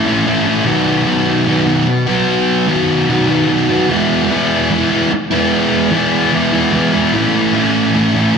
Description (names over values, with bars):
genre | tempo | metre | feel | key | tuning
rock | 74 BPM | 4/4 | straight | unclear | A4 = 441 Hz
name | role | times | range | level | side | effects
sludgy distorted guitar | solo | 0.0-8.4 s | A2 to F#4 | -12 LUFS | equal | overdrive, tape echo
room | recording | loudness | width
wet scoring stage reverb, RT60 1.5 s | big arena sound | -12 LUFS | side -6 dB against mid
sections
0.0-8.4 A section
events
none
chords
0.0 A; 0.7 B; 3.9 E; 7.1 A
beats
| 0.66 1.47 2.28 3.09 | 3.90 4.71 5.52 6.33 | 7.14 7.95